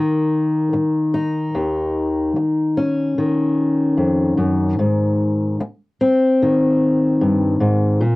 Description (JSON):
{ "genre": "folk, solo fingerstyle acoustic guitar", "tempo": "74 BPM", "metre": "4/4", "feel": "straight", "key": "unclear", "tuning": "A4 = 440 Hz", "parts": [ { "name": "fingerpicked steel-string acoustic guitar", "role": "solo", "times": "0.0-8.2 s", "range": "Eb2 to Eb4", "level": "-16 LUFS", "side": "left 1 dB", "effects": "cassette tape" } ], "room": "moderate booth ambience, RT60 0.3 s", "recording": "home recording on cassette", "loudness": "-16 LUFS", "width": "side -21 dB against mid", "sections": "0.0-8.2 A section", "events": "none", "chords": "0.0 Eb5; 1.6 Ebm9; 4.8 Ab", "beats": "0.76 | 1.57 2.37 3.18 3.99 | 4.79 5.60 6.40 7.21 | 8.02" }